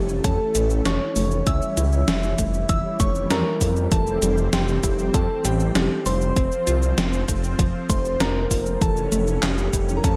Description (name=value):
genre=synthwave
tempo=98 BPM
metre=4/4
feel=straight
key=unclear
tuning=A4 = 440 Hz
part: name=soft octave-layered synth lead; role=melody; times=0.0-10.2 s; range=G4 to E5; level=-29 LUFS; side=equal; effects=chorus, phaser, diffuse ambient delay
part: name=soft synth bell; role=second line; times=0.0-10.2 s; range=G5 to E6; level=-36 LUFS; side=equal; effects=chorus, diffuse ambient delay
part: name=analog string pad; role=sustained chords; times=0.0-10.2 s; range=E3 to C#4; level=-32 LUFS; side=equal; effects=ensemble chorus, sidechain pumping
part: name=unison pluck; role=arpeggios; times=0.0-10.2 s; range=E3 to F4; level=-33 LUFS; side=equal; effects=diffuse ambient delay
part: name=detuned saw bass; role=bass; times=0.0-10.2 s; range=F1 to F2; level=-26 LUFS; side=equal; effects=chorus, tube saturation, sidechain pumping
part: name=gated 80s digital drum machine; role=drums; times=0.1-10.2 s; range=handclaps, hi-hat, shaker, snare drum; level=-29 LUFS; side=equal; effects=gated reverb, gated reverb snare, overdrive
part: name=electronic kick drum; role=drums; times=0.2-10.2 s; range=none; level=-26 LUFS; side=equal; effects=overdrive
room=light reverb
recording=none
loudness=-22 LUFS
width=mono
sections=0.0-10.2 A section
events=none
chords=0.0 A/F; 3.9 C/F; 6.4 F5; 8.8 A/F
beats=0.24 0.85 | 1.47 2.08 2.69 3.30 | 3.92 4.53 5.14 5.75 | 6.37 6.98 7.59 8.20 | 8.81 9.43 10.04